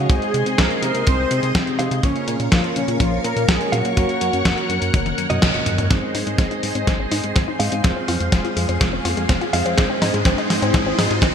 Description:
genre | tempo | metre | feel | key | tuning
italo disco | 124 BPM | 4/4 | straight | unclear | A4 = 439 Hz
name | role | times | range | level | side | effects
mellow synth brass | melody | 0.0-5.4 s | C3 to C5 | -23 LUFS | left 1 dB | chorus, phaser, cassette tape, digital delay
string machine, full ensemble | sustained chords | 0.0-11.3 s | Ab4 to Db6 | -25 LUFS | left 1 dB | phaser, ensemble chorus
direct-recorded clean electric guitar | stabs | 0.0-11.3 s | Ab3 to F5 | -27 LUFS | right 3 dB | vintage 12-bit sampler grit, low-pass filter, digital delay
chorused synth bass | bass | 0.0-11.3 s | F1 to C3 | -25 LUFS | equal | none
clean 12-bit digital drum machine | drums | 0.1-11.3 s | hi-hat, snare drum, toms | -22 LUFS | equal | gated reverb
kick drum | drums | 0.1-11.3 s | none | -19 LUFS | equal | none
analog pluck | arpeggios | 5.9-11.3 s | Ab3 to F4 | -26 LUFS | left 3 dB | chorus, digital delay
riser | sound effects | 8.0-11.3 s | none | -28 LUFS | left 2 dB | none
room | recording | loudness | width
moderate plate reverb, RT60 1.9 s | bright 1980s-style digital production | -17 LUFS | side -7 dB against mid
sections
0.0-5.9 A section; 5.9-11.3 B section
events
drum fill 4.9-5.9, 5.9-11.3; band accent 5.4; filter sweep on synth arpeggio sound 5.9-11.3; filter sweep on clean electric guitar 5.9-11.3; riser 8.0-11.3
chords
0.1 Ab/C; 2.0 Bbm; 4.0 Gb; 5.9 Ab; 7.8 Fm; 9.8 Ab

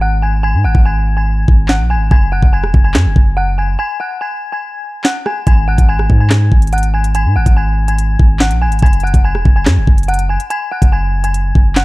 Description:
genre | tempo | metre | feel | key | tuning
hip hop, drill | 143 BPM | 4/4 | half-time | unclear | A4 = 440 Hz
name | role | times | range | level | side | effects
dark detuned synth bell | melody | 0.0-11.8 s | F#5 to G#6 | -20 LUFS | left 1 dB | chorus
long sustained 808-style bass | bass | 0.0-11.8 s | E1 to G#2 | -13 LUFS | equal | none
drill drum kit | drums | 0.7-11.8 s | handclaps, hi-hat, kick drum, rim click, snare drum | -11 LUFS | equal | none
room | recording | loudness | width
digital ambience | dark, warm production | -10 LUFS | side -20 dB against mid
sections
0.0-11.8 A section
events
break 0.0-5.5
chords
0.0 F#sus2/G#; 2.1 F#sus2; 5.5 F#sus2/G#; 8.8 F#sus2

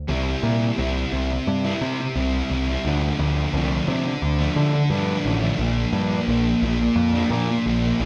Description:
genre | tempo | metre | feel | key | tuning
post-rock | 87 BPM | 4/4 | straight | unclear | A4 = 440 Hz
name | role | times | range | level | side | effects
growling picked electric bass | bass | 0.0-8.1 s | A1 to D3 | -25 LUFS | equal | overdrive
thick fuzz guitar | riff | 0.1-8.1 s | Bb2 to E4 | -25 LUFS | equal | distortion
room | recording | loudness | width
wet large studio reverb, RT60 1.4 s | band playing live in one room | -22 LUFS | mono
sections
0.1-8.1 A section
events
none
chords
0.1 C; 2.8 Dm7; 5.6 Bb

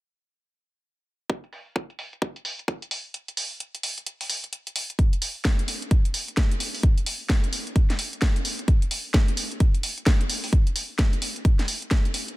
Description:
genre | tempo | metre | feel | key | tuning
house | 130 BPM | 4/4 | swing 62% on 16ths | none | none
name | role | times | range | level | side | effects
electronic kick drum | drums | 1.3-12.0 s | none | -20 LUFS | equal | high-pass filter on kick, high-pass filter on room
garage drum kit | drums | 1.3-12.4 s | hi-hat, snare drum | -28 LUFS | equal | low-pass filter on hats, low-pass filter on snare, low-pass filter on room
room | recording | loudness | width
little or no reverb | dense, heavily limited modern master | -22 LUFS | side -19 dB against mid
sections
1.3-5.0 A section; 5.0-12.4 B section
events
kick drops out 3.1-5.0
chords
none

